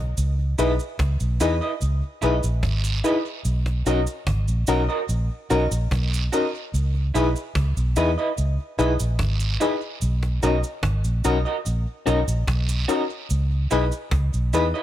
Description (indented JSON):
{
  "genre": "lovers rock reggae",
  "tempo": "73 BPM",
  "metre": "4/4",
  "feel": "straight",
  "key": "C# dorian",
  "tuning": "A4 = 438 Hz",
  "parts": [
    { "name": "vintage muted fingered electric bass", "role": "bass", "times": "0.0-14.7 s", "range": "G#1 to E2", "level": "-22 LUFS", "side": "equal", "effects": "none" },
    { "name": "cajon", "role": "drums", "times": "0.2-14.8 s", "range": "none", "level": "-29 LUFS", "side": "right 1 dB", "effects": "none" },
    { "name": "cabasa and guiro", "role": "percussion", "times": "0.2-14.7 s", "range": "none", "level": "-35 LUFS", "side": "right 6 dB", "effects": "tape echo" },
    { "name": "FM electric piano with tremolo", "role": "accompaniment", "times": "0.6-14.7 s", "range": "C#4 to B4", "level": "-25 LUFS", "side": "left 6 dB", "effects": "tube saturation" },
    { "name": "electric guitar through a small old amp", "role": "stabs", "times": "0.6-14.8 s", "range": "E4 to D#5", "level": "-28 LUFS", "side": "right 5 dB", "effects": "lush chorus" }
  ],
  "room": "small room ambience",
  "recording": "none",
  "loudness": "-20 LUFS",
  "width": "side -12 dB against mid",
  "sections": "0.2-14.8 A section",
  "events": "drum fill 0.0",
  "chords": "0.2 C#m9; 3.5 Bmaj7; 6.7 C#m9; 10.0 Bmaj7; 13.3 C#m9",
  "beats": "| 0.17 1.00 1.82 2.64 | 3.46 4.28 5.10 5.92 | 6.74 7.56 8.38 9.20 | 10.02 10.84 11.66 12.48 | 13.30 14.12"
}